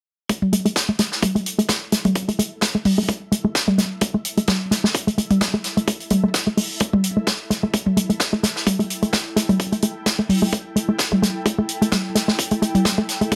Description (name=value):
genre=minimal techno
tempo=129 BPM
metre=4/4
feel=swing 55% on 16ths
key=unclear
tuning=A4 = 440 Hz
part: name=hollow square pluck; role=riff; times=0.3-13.4 s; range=A3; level=-22 LUFS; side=equal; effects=chorus, sidechain pumping, dub echo
part: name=electronic kick drum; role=drums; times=0.3-13.4 s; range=none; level=-27 LUFS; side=equal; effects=high-pass filter on kick, high-pass filter on room
part: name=vintage drum kit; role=drums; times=0.3-13.4 s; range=hi-hat, snare drum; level=-27 LUFS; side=equal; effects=sidechain pumping on hats, high-pass filter on hats, high-pass filter on snare, high-pass filter on room
part: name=ethereal airy pad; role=texture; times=1.1-13.4 s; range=E4 to G5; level=-37 LUFS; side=equal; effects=ensemble chorus, built-in reverb, sidechain pumping
part: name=electronic toms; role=percussion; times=0.4-12.8 s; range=none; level=-23 LUFS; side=equal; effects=digital delay
room=light reverb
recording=none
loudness=-20 LUFS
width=mono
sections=0.3-13.4 A section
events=fade-in on ambient pad 0.3-13.4; filter sweep on synth arpeggio sound 0.3-13.4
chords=0.3 A5